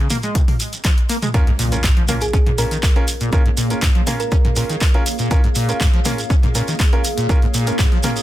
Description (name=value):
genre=acid house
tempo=121 BPM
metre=4/4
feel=straight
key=Bb minor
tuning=A4 = 441 Hz
part: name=acid bass, saw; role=riff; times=0.0-8.1 s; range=Ab2 to Db4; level=-23 LUFS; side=equal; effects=overdrive, lush chorus, sidechain pumping, digital delay
part: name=punchy analog drum machine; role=drums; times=0.1-8.2 s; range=handclaps, hi-hat, toms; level=-24 LUFS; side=left 1 dB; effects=none
part: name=shekere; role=percussion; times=0.1-8.2 s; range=none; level=-27 LUFS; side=right 2 dB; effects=none
part: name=electronic kick drum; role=drums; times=0.4-7.9 s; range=none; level=-16 LUFS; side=equal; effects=none
part: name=bright baby grand piano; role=stabs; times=1.3-8.2 s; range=Db4 to Bb4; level=-27 LUFS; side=right 2 dB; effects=digital delay
part: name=impact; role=sound effects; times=1.3-3.3 s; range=none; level=-26 LUFS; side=equal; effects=none
part: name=granular cloud pad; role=texture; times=2.8-8.2 s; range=Bb3 to F5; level=-27 LUFS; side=right 1 dB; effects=built-in reverb, sidechain pumping
part: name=thumb-piano-like synth pluck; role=melody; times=2.2-4.6 s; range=Ab4 to Bb4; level=-27 LUFS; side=right 3 dB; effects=chorus, cassette tape, digital delay
room=light reverb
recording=dense, heavily limited modern master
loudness=-15 LUFS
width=side -14 dB against mid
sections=0.0-1.3 A section; 1.3-8.2 B section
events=drop 1.3-8.2; impact 1.3-3.3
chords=0.0 Bbm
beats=0.35 0.85 | 1.34 1.84 2.33 2.83 | 3.33 3.82 4.32 4.81 | 5.31 5.81 6.30 6.80 | 7.29 7.79